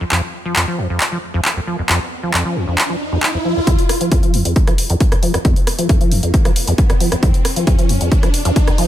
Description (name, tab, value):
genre	driving peak-time techno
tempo	135 BPM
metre	4/4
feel	straight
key	unclear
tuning	A4 = 439 Hz
part	acid bass, saw	riff	0.0-8.9 s	F2 to F3	-19 LUFS	equal	analog chorus, sidechain pumping, ping-pong delay
part	downlifter and riser	sound effects	1.4-8.9 s	none	-25 LUFS	equal	none
part	techno drum kit	drums	0.1-8.9 s	handclaps, hi-hat, rim click	-20 LUFS	equal	overdrive, sidechain pumping on hats, high-pass filter on hats, studio ambience, high-pass filter on snare
part	electronic kick drum	drums	3.7-8.7 s	none	-14 LUFS	equal	overdrive, studio ambience
room	little or no reverb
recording	none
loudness	-14 LUFS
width	side -12 dB against mid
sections	0.0-3.7 A section; 3.7-8.9 B section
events	filter sweep on acid bass 0.0-3.7, 3.7-8.9; riser 1.4-3.7, 3.7-8.9; build-up 3.7-8.9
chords	none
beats	| 0.12 0.56 1.00 1.45 | 1.89 2.34 2.78 3.23 | 3.67 4.12 4.56 5.00 | 5.45 5.89 6.34 6.78 | 7.23 7.67 8.12 8.56